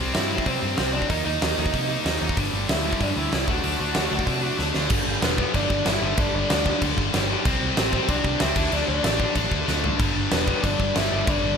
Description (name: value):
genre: punk rock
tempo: 189 BPM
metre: 4/4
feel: straight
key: unclear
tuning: A4 = 439 Hz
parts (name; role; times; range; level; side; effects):
- sludgy distorted guitar; riff; 0.0-11.6 s; G2 to Eb4; -25 LUFS; left 2 dB; overdrive
- picked electric bass; bass; 0.0-11.5 s; E1 to C3; -29 LUFS; equal; none
- lead guitar through a small cranked amp; melody; 0.1-11.6 s; B3 to F#5; -28 LUFS; equal; overdrive
- big rock drum kit; drums; 0.1-11.3 s; crash cymbal, hi-hat, kick drum, snare drum, toms; -25 LUFS; equal; none
room: little or no reverb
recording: none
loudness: -20 LUFS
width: side -6 dB against mid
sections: 0.0-4.9 A section; 4.9-11.6 B section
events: drum fill 4.6-4.9, 9.7-10.0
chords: 0.0 C; 1.1 Eb5; 2.4 G5; 3.5 D; 4.9 G; 7.5 C; 8.6 D5; 10.0 G